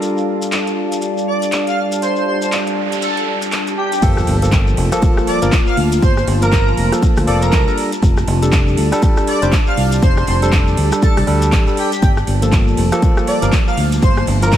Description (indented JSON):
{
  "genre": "deep house",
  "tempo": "120 BPM",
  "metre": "4/4",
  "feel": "swing 60% on 16ths",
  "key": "G minor",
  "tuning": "A4 = 440 Hz",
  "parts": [
    { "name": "airy breathy pad", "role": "sustained chords", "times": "0.0-14.6 s", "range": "G3 to A5", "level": "-25 LUFS", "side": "equal", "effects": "chorus, vintage 12-bit sampler grit, sidechain pumping" },
    { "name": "barky tine electric piano", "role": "stabs", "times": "0.0-14.6 s", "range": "F3 to C5", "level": "-21 LUFS", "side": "equal", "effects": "overdrive, sidechain pumping, low-pass filter, ping-pong delay" },
    { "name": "house drum kit", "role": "drums", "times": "0.0-14.6 s", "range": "crash cymbal, handclaps, hi-hat, rim click", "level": "-24 LUFS", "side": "equal", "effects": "studio reverb" },
    { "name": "shekere", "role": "percussion", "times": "0.0-14.6 s", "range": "none", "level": "-32 LUFS", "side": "left 4 dB", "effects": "none" },
    { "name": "warbly tape-like pad", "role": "texture", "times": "0.0-14.6 s", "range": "F3 to A5", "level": "-24 LUFS", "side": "equal", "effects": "chorus, built-in reverb, sidechain pumping" },
    { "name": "airy dreamy lead", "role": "melody", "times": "1.3-14.6 s", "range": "G4 to F5", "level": "-22 LUFS", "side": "right 1 dB", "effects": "chorus, ping-pong delay" },
    { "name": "noise sweep and sub drop", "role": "sound effects", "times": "2.4-6.0 s", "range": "none", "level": "-26 LUFS", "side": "right 2 dB", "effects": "none" },
    { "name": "fingered electric bass", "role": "bass", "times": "4.0-14.6 s", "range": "F1 to D2", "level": "-17 LUFS", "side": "equal", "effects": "sidechain pumping" },
    { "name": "electronic kick drum", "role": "drums", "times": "4.0-14.6 s", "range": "none", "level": "-14 LUFS", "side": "equal", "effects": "studio reverb" },
    { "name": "soft brush drum kit", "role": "drums", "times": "4.0-14.6 s", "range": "hi-hat, ride cymbal, snare drum", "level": "-34 LUFS", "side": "left 3 dB", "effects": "high-pass filter on cymbals, studio reverb, high-pass filter on hats, high-pass filter on snare, high-pass filter on room" }
  ],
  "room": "light reverb",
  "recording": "none",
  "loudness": "-13 LUFS",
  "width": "side -11 dB against mid",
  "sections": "0.0-4.0 A section; 4.0-14.6 B section",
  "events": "filter sweep on tine electric piano 0.0-4.0; noise sweep 2.4-4.0; drop 4.0-14.6; impact 4.0-6.0",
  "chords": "0.0 F69; 4.0 Gm9; 7.8 F69; 12.0 Gm9",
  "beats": "| 0.02 0.52 1.02 1.52 | 2.02 2.52 3.02 3.52 | 4.02 4.52 5.02 5.52 | 6.02 6.52 7.02 7.52 | 8.02 8.52 9.02 9.52 | 10.02 10.52 11.02 11.52 | 12.02 12.52 13.02 13.52 | 14.02 14.52"
}